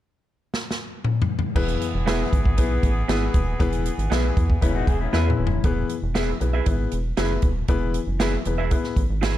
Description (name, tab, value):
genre	uptempo 1960s-style soul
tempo	118 BPM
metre	4/4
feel	straight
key	E major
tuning	A4 = 440 Hz
part	swinging big-band drum kit	drums	0.5-9.3 s	crash cymbal, hi-hat, kick drum, snare drum, toms	-24 LUFS	equal	none
part	warm horn section	second line	1.6-5.3 s	E3 to G#4	-32 LUFS	right 1 dB	plate reverb
part	warm concert grand piano	accompaniment	1.6-9.4 s	E3 to E5	-28 LUFS	left 7 dB	plate reverb
part	rubbery square bass	bass	1.6-9.4 s	D#1 to E2	-24 LUFS	equal	none
part	electric guitar through a small old amp	stabs	2.1-9.4 s	B3 to E5	-29 LUFS	right 9 dB	none
part	electric guitar through a small old amp	riff	4.6-5.6 s	C#4 to G#4	-29 LUFS	left 7 dB	lush chorus
room	little or no reverb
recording	dark, warm production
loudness	-20 LUFS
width	side -13 dB against mid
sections	0.0-1.6 A section; 1.6-5.6 B section; 5.6-9.4 C section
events	drum fill 0.5-1.6, 5.1-5.6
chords	0.0 N.C.; 1.6 E